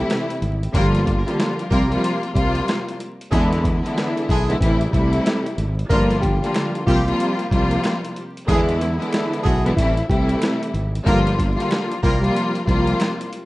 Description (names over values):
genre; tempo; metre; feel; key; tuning
hip hop, boom-bap hip-hop; 93 BPM; 4/4; swing 61% on 16ths; unclear; A4 = 440 Hz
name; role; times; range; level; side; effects
mellow electric guitar; melody; 0.0-0.1, 5.9-10.4 s; E4 to Bb4; -28 LUFS; equal; high-pass filter, low-pass filter
warm studio string section; accompaniment; 0.0-13.3 s; C3 to F4; -21 LUFS; left 1 dB; high-pass filter, low-pass filter
boom bap sampler-style drum kit; drums; 0.1-13.5 s; hi-hat, kick drum, rim click, snare drum; -24 LUFS; equal; none
fretless electric bass; bass; 0.4-12.9 s; G1 to E2; -21 LUFS; equal; none
warm horn section; stabs; 0.7-12.2 s; F3 to Bb4; -28 LUFS; equal; high-pass filter, low-pass filter, tape echo
finger snaps; percussion; 6.5-13.2 s; none; -36 LUFS; right 2 dB; none
room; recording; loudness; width
little or no reverb; rough home demo mix, vinyl crackle, nothing above 10.6 kHz; -17 LUFS; side -19 dB against mid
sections
0.0-13.5 A section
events
none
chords
0.0 Am7; 0.7 Gm7; 1.7 C7sus4; 3.3 E7; 4.6 Am7; 5.9 Gm7; 6.9 C7sus4; 8.5 E7; 9.8 Am7; 11.1 Gm7; 12.0 C7sus4